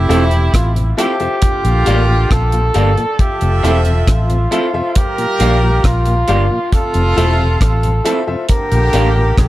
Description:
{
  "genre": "roots reggae",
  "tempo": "68 BPM",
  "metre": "4/4",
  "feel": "straight",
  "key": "F major",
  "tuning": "A4 = 440 Hz",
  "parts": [
    { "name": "clear flugelhorn", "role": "melody", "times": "0.0-9.5 s", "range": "F4 to Bb4", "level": "-19 LUFS", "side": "equal", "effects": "dub echo" },
    { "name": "warm horn section", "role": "second line", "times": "0.0-9.5 s", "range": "C3 to E5", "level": "-22 LUFS", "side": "right 2 dB", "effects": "dub echo" },
    { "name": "vintage muted fingered electric bass", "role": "bass", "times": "0.0-9.5 s", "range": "E1 to Bb1", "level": "-14 LUFS", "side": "equal", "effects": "none" },
    { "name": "electric guitar through a small old amp", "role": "accompaniment", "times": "0.1-9.2 s", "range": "Bb3 to A4", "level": "-24 LUFS", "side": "right 4 dB", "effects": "dub echo" },
    { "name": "tonewheel organ", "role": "accompaniment", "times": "0.1-9.2 s", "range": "F2 to E4", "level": "-25 LUFS", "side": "left 2 dB", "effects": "chorus vibrato, slow rotary speaker" },
    { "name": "clear upright piano", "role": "stabs", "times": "0.1-9.1 s", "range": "F4 to F5", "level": "-22 LUFS", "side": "left 3 dB", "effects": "none" },
    { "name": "deep reggae drum kit", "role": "drums", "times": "0.1-9.5 s", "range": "hi-hat, kick drum, rim click", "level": "-16 LUFS", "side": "equal", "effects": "none" }
  ],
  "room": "studio reverb",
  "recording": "none",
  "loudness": "-12 LUFS",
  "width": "side -16 dB against mid",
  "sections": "0.0-9.5 A section",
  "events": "none",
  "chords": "0.0 Fmaj7; 1.4 Bb6; 3.2 Fmaj7; 5.0 Bb6; 6.7 Fmaj7; 8.5 Bb6"
}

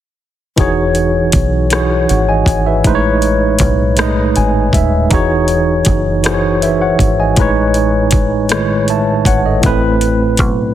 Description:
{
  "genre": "slow six-eight R&B",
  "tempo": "53 BPM (dotted quarters)",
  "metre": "6/8",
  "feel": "straight",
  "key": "E major",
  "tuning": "A4 = 441 Hz",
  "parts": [
    { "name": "barky tine electric piano", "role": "accompaniment", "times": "0.6-10.7 s", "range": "A2 to A5", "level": "-13 LUFS", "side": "equal", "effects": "medium stereo tremolo" },
    { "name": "deep dub fingered electric bass", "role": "bass", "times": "0.6-10.7 s", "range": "D#1 to B1", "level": "-17 LUFS", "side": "equal", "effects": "none" },
    { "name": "smooth R&B drum kit", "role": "drums", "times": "0.6-10.6 s", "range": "hi-hat, kick drum, rim click", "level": "-16 LUFS", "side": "equal", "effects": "none" }
  ],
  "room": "moderate echo chamber reverb, RT60 2.0 s",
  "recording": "heavily compressed radio sound",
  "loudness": "-11 LUFS",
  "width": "side -11 dB against mid",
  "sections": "0.6-5.1 A section; 5.1-10.7 B section",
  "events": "tine electric piano fill 4.0-5.1",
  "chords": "0.6 Emaj13; 2.8 Amaj9#11; 5.1 Emaj13; 7.4 Amaj9#11; 9.6 Amadd9"
}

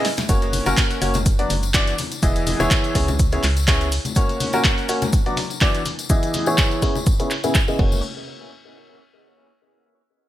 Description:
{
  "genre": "piano house",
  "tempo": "124 BPM",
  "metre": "4/4",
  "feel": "swing 54% on 16ths",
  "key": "F# mixolydian",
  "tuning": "A4 = 439 Hz",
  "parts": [
    { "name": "bright upright piano", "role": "riff", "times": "0.0-8.0 s", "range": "C#3 to E5", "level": "-23 LUFS", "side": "left 1 dB", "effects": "sidechain pumping, low-pass filter, digital delay" },
    { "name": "punchy analog drum machine", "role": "drums", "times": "0.0-7.9 s", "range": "crash cymbal, handclaps, hi-hat, snare drum", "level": "-24 LUFS", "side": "equal", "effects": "low-pass filter on hats, low-pass filter on snare, low-pass filter on cymbals" },
    { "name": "breakbeat sampler-style drum kit", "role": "drums", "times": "0.1-7.7 s", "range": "hi-hat, shaker, snare drum", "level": "-32 LUFS", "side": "left 1 dB", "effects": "sidechain pumping on perc, high-pass filter on perc, sidechain pumping on hats, high-pass filter on hats, high-pass filter on snare" },
    { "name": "tambourine and congas", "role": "percussion", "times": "0.2-8.0 s", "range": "none", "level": "-30 LUFS", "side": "left 4 dB", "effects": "none" },
    { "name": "organ-like FM bass", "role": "bass", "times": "0.3-4.0, 7.8-8.0 s", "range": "E1 to C#2", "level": "-23 LUFS", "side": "equal", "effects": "sidechain pumping" },
    { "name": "electronic kick drum", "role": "drums", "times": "0.3-7.9 s", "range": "none", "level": "-19 LUFS", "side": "equal", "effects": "none" }
  ],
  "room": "light reverb, digital ambience",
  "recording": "bright 1980s-style digital production",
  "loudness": "-17 LUFS",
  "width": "side -13 dB against mid",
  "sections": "0.3-8.0 A section; 8.0-10.0 B section",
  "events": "break 0.0; drum fill 0.0; filter sweep on upright piano 0.3-8.0",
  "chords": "0.3 F#; 1.3 Bm/F#; 2.0 Emaj7; 3.0 C#m7; 4.2 F#; 5.1 Bm/F#; 5.9 Emaj7; 6.8 C#m7; 7.8 F#; 8.0 N.C."
}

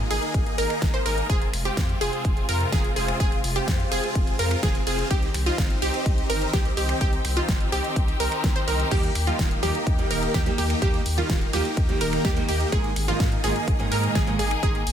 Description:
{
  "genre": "EDM, festival progressive house",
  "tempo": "126 BPM",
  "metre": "4/4",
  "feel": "straight",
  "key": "Ab major",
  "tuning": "A4 = 440 Hz",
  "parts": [
    { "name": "muted studio string section", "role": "sustained chords", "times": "0.0-14.9 s", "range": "C3 to Ab4", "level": "-33 LUFS", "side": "left 3 dB", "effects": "sidechain pumping" },
    { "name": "wide unison pluck", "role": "arpeggios", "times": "0.0-14.8 s", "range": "F4 to C5", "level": "-29 LUFS", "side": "right 1 dB", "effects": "sidechain pumping, tape echo" },
    { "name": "big supersaw lead", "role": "riff", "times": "0.0-14.8 s", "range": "Bb3 to C5", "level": "-29 LUFS", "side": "equal", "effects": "phaser, sidechain pumping, tape echo" },
    { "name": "saturated sub bass", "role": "bass", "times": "0.0-14.9 s", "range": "Eb1 to Ab2", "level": "-28 LUFS", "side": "equal", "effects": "sidechain pumping" },
    { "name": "big-room dance drum kit", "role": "drums", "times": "0.1-14.9 s", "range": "crash cymbal, finger snaps, hi-hat, snare drum", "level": "-31 LUFS", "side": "equal", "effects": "none" },
    { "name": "electronic kick drum", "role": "drums", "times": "0.3-14.7 s", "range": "none", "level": "-24 LUFS", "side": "equal", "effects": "none" },
    { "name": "picked steel-string acoustic guitar", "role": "accompaniment", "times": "8.9-14.8 s", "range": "Ab2 to Ab4", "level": "-30 LUFS", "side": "right 4 dB", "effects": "sidechain pumping, tape echo" }
  ],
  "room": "light reverb, digital ambience",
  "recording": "none",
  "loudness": "-21 LUFS",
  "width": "side -9 dB against mid",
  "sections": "0.0-14.9 A section",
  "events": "none",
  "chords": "0.0 Absus2; 1.3 Fm; 5.1 Cm; 8.9 Eb; 12.7 Absus2"
}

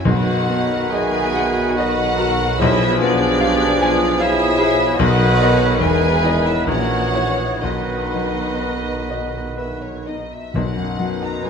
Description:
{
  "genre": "classical",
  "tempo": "60-77 BPM",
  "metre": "3/4",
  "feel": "rubato",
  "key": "B major",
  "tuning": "A4 = 436 Hz",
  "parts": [
    { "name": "clear grand piano", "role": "melody", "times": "0.0-11.5 s", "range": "A#1 to G#5", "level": "-22 LUFS", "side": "left 3 dB", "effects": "none" },
    { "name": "muted studio violin section", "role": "melody", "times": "0.0-11.5 s", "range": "C#5 to A#5", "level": "-25 LUFS", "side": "left 2 dB", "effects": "none" },
    { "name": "dark clarinet", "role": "second line", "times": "0.0-11.5 s", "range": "D4 to G#4", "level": "-28 LUFS", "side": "equal", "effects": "none" },
    { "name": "mellow hollow concert flute", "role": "second line", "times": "0.0-11.5 s", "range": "B4 to A#5", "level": "-29 LUFS", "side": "left 3 dB", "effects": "none" },
    { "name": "muted studio violin section", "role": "second line", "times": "0.0-11.5 s", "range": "D4 to G#4", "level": "-26 LUFS", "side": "right 1 dB", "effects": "none" },
    { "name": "muted studio viola section", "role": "accompaniment", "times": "0.0-11.5 s", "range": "F#3 to D#5", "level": "-27 LUFS", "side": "right 1 dB", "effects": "none" },
    { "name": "dark French horn section", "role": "sustained chords", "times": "0.0-11.5 s", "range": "D#3 to D#4", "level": "-28 LUFS", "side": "left 4 dB", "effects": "none" },
    { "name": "clear oboe", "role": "second line", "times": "0.1-11.5 s", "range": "G#4 to C#5", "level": "-29 LUFS", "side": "right 4 dB", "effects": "none" },
    { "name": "mellow bassoon", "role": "accompaniment", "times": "0.1-11.5 s", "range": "D#3 to F3", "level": "-27 LUFS", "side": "right 2 dB", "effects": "none" },
    { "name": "mellow trumpet", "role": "stabs", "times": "0.1-10.2 s", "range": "F#4 to B4", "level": "-28 LUFS", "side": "right 3 dB", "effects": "none" },
    { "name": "muted studio cello section", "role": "bass", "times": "0.1-11.5 s", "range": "E2 to B2", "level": "-28 LUFS", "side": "right 2 dB", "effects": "none" },
    { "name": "muted studio double bass section", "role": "bass", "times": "0.1-11.5 s", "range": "E1 to B1", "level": "-29 LUFS", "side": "right 3 dB", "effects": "none" },
    { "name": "warm tuba", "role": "bass", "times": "0.1-10.3 s", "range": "E1 to B1", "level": "-28 LUFS", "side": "right 6 dB", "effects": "none" },
    { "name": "timpani", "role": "percussion", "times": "0.1-3.8, 10.5-11.5 s", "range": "B2", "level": "-25 LUFS", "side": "equal", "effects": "none" }
  ],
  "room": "moderate scoring stage reverb, RT60 1.9 s",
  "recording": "none",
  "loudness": "-15 LUFS",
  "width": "side -6 dB against mid",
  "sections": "0.0-10.5 A section",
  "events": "none",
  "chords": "0.1 B; 2.6 Bdim7; 5.0 B; 5.8 Emaj7; 6.7 F#7/A#; 7.6 B"
}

